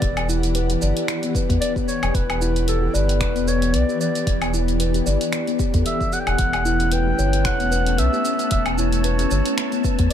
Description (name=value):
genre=organic downtempo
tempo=113 BPM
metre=4/4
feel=swing 56% on 16ths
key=E dorian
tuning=A4 = 440 Hz
part: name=mellow clarinet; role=melody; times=0.0-10.1 s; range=A4 to G5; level=-26 LUFS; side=equal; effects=ping-pong delay, shimmer reverb
part: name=granular cloud pad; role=sustained chords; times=0.0-10.1 s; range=E3 to F#5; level=-26 LUFS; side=left 1 dB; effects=built-in reverb, sidechain pumping, shimmer reverb
part: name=round analog bass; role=bass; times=0.0-10.1 s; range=E1 to E2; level=-21 LUFS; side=equal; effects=tube saturation, sidechain pumping
part: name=deep house drum kit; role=drums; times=0.0-10.1 s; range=finger snaps, hi-hat, shaker, woodblock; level=-28 LUFS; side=equal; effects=none
part: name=electronic kick drum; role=drums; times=0.0-10.1 s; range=none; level=-24 LUFS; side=equal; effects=none
part: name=steel tongue drum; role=arpeggios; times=0.3-10.1 s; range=B3 to D5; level=-25 LUFS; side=left 2 dB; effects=tape echo, shimmer reverb
part: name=wind-like tuned noise texture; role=texture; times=7.2-10.1 s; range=A5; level=-35 LUFS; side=right 6 dB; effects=built-in reverb, shimmer reverb
room=light reverb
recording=none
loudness=-18 LUFS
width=side -9 dB against mid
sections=0.0-10.1 A section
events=none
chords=0.0 Em; 6.4 Aadd9/E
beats=| 0.02 0.55 1.08 1.61 | 2.15 2.68 3.21 3.74 | 4.27 4.80 5.33 5.86 | 6.39 6.92 7.45 7.99 | 8.52 9.05 9.58 10.11